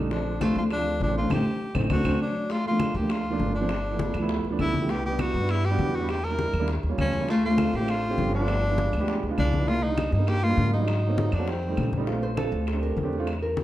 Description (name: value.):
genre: Afro-Cuban jazz.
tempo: 200 BPM.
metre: 4/4.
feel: straight.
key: G minor.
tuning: A4 = 439 Hz.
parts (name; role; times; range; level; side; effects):
warm grand piano; accompaniment; 0.0-13.3 s; F3 to G4; -30 LUFS; right 3 dB; none.
upright bass; bass; 0.0-13.6 s; G1 to Ab2; -28 LUFS; equal; none.
clear tenor saxophone; melody; 0.1-11.9 s; C4 to Bb4; -30 LUFS; equal; none.
nylon-string guitar; second line; 0.1-13.6 s; Eb3 to C5; -30 LUFS; left 1 dB; none.
bongos; percussion; 0.1-13.6 s; none; -36 LUFS; left 4 dB; none.
congas; percussion; 0.1-13.6 s; none; -33 LUFS; left 2 dB; none.
claves; percussion; 0.4-13.4 s; none; -41 LUFS; right 2 dB; none.
room: wet large studio reverb, RT60 1.3 s.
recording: dark, warm production.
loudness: -23 LUFS.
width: side -14 dB against mid.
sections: 0.0-2.5 A section; 2.5-12.1 B section; 12.1-13.6 C section.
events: band accent 1.3-2.5; nylon-string guitar solo 12.1-13.6.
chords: 0.1 Bbmaj7; 1.3 Am7b5; 1.9 D7; 2.5 Gm9; 3.7 G13; 4.9 Cmaj9; 6.1 Em7b5; 6.7 Eb9; 7.3 Dm7; 8.5 G7b9; 9.7 Cm9; 10.9 Ab9; 11.5 F7; 12.1 Bbmaj7.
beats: | 0.11 0.41 0.70 1.00 | 1.30 1.60 1.90 2.20 | 2.50 2.80 3.10 3.39 | 3.69 3.99 4.29 4.59 | 4.89 5.19 5.49 5.79 | 6.09 6.38 6.68 6.98 | 7.28 7.58 7.88 8.18 | 8.48 8.78 9.08 9.38 | 9.68 9.98 10.28 10.58 | 10.88 11.18 11.48 11.78 | 12.07 12.38 12.68 12.97 | 13.27 13.57.